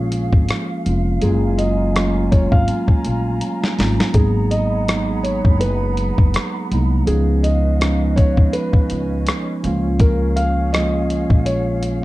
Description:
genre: lo-fi hip hop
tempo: 82 BPM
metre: 4/4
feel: swing 56% on 16ths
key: unclear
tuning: A4 = 439 Hz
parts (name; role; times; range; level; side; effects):
- mellow tine electric piano; accompaniment; 0.0-12.0 s; E#3 to E#4; -21 LUFS; right 2 dB; cassette tape
- large flute ensemble; sustained chords; 0.0-12.0 s; C#4 to B5; -31 LUFS; right 1 dB; none
- upright bass; bass; 0.0-12.0 s; E#1 to D#2; -20 LUFS; equal; none
- dusty soul sampler-style drum kit; drums; 0.1-12.0 s; hi-hat, kick drum, rim click, snare drum; -17 LUFS; equal; none
- felt-muted upright piano; melody; 1.2-12.0 s; G#4 to E#5; -24 LUFS; left 1 dB; analog delay
room: light reverb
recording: dark, warm production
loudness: -15 LUFS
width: side -18 dB against mid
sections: 0.0-12.0 A section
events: drum fill 3.4-4.1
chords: 0.0 A#m7; 1.2 F#maj9; 4.1 G#m9; 7.1 C#9; 9.6 A#m7/C#

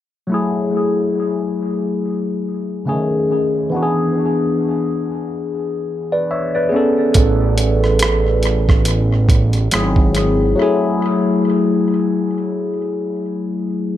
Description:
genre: R&B, neo-soul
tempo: 70 BPM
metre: 4/4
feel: swing 57% on 16ths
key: F# minor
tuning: A4 = 440 Hz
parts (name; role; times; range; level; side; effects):
- barky tine electric piano; accompaniment; 0.3-14.0 s; C#3 to E5; -17 LUFS; left 2 dB; overdrive, phaser, tape echo
- boom bap sampler-style drum kit; drums; 7.1-10.4 s; hi-hat, kick drum, rim click; -17 LUFS; right 1 dB; tape echo
- fat analog bass; bass; 7.2-10.6 s; G#1 to A1; -16 LUFS; right 1 dB; none
room: digital ambience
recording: echo-heavy mix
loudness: -15 LUFS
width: side -12 dB against mid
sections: 0.3-14.0 A section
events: break 10.6-14.0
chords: 0.3 F#m9; 2.9 Amaj7#11/D#; 3.7 E7; 6.7 Amaj9; 9.7 G#7b13; 10.6 F#m9

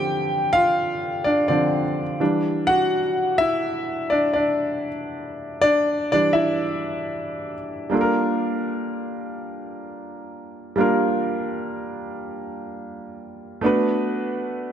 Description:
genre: R&B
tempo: 84 BPM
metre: 4/4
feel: swing 58% on 16ths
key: unclear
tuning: A4 = 440 Hz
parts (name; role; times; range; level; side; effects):
- clear concert grand piano; solo; 0.0-14.7 s; D3 to G5; -21 LUFS; equal; none
room: moderate lush hall reverb, RT60 2.3 s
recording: none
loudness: -20 LUFS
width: side -9 dB against mid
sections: 0.0-7.9 A section; 7.9-14.7 B section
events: grand piano solo 0.0-7.9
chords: 0.0 Dm7; 2.2 Em7; 7.9 Gm7; 13.6 Bm7

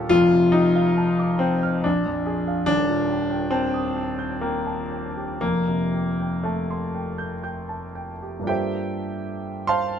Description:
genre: classical, impressionist solo piano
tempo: 47-73 BPM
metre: 3/4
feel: rubato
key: G minor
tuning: A4 = 439 Hz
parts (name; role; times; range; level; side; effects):
- clear grand piano; solo; 0.0-10.0 s; Eb1 to G6; -21 LUFS; left 1 dB; none
room: moderate studio reverb, RT60 0.6 s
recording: minimal, uncompressed stereo recording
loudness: -21 LUFS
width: side -8 dB against mid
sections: 0.0-8.5 A section; 8.5-10.0 B section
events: none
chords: 0.1 F13; 1.8 Bb7; 2.7 Ebmaj7#11; 5.4 Fadd9; 8.5 Gm9

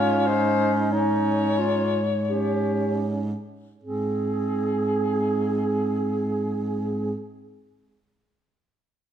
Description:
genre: classical, lyrical piece for single-reed quartet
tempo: 37-49 BPM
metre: 4/4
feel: rubato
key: Ab major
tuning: A4 = 444 Hz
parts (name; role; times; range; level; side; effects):
- clear soprano saxophone; melody; 0.0-7.1 s; Ab4 to Db5; -29 LUFS; left 6 dB; none
- warm alto saxophone; second line; 0.0-7.1 s; Db4 to Ab4; -28 LUFS; right 7 dB; none
- bright clarinet; accompaniment; 0.0-7.1 s; C4 to G4; -28 LUFS; left 2 dB; none
- clear baritone saxophone; bass; 0.0-7.1 s; Ab2; -27 LUFS; right 2 dB; none
room: wet recital hall reverb, RT60 1.4 s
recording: minimal, uncompressed stereo recording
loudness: -22 LUFS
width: side -9 dB against mid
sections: 0.0-3.8 A section; 3.8-9.1 B section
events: slowing down 0.0-3.8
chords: 0.0 Absus4; 3.8 Ab

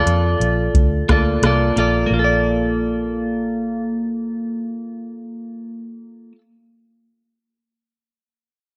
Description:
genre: indie pop, bedroom pop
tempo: 88 BPM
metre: 4/4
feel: swing 60% on 16ths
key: Bb major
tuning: A4 = 436 Hz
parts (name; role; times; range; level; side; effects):
- clean electric guitar; accompaniment; 0.0-6.4 s; Bb3 to D5; -22 LUFS; equal; lush chorus, warbly pitch drift
- vintage muted fingered electric bass; bass; 0.0-6.3 s; Bb1 to F2; -23 LUFS; equal; none
- soft vintage rhythm box; drums; 0.1-2.0 s; hi-hat, kick drum, rim click; -21 LUFS; equal; none
room: light reverb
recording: dark, warm production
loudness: -19 LUFS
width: mono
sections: 0.0-2.1 A section; 2.1-4.8 B section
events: none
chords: 0.0 Bbmaj7

